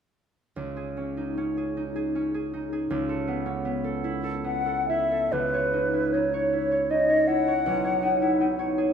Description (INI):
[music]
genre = classical, impressionist duo for flute and harp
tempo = 76 BPM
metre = 3/4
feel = uneven beats, rubato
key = C# minor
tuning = A4 = 442 Hz
[part]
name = concert harp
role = accompaniment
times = 0.6-8.9 s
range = B1 to C#5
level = -26 LUFS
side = right 1 dB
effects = none
[part]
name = mellow hollow silver concert flute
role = melody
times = 4.5-8.8 s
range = B4 to F#5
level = -24 LUFS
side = left 1 dB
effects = none
[sound]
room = wet scoring stage reverb, RT60 2.0 s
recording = none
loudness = -23 LUFS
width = side -7 dB against mid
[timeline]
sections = 0.6-5.3 A section; 5.3-8.9 B section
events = none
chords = 0.6 C#sus2; 2.9 B9sus4/C#; 5.3 C#madd9; 7.7 Badd9